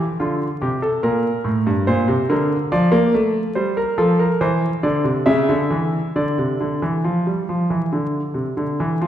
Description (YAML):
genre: classical, baroque-style two-part invention for grand piano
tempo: 70 BPM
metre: 4/4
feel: straight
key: D minor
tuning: A4 = 440 Hz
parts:
  - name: clear grand piano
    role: solo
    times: 0.0-9.1 s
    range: G2 to E5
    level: -17 LUFS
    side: equal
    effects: none
room: wet recital hall reverb, RT60 1.7 s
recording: recorded in a church or concert hall, vinyl crackle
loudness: -17 LUFS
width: side -10 dB against mid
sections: 0.0-9.1 A section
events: none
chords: 0.0 Dm; 1.0 Gm; 2.7 Dm/F; 4.4 Cadd9; 5.3 C#m; 6.1 Dm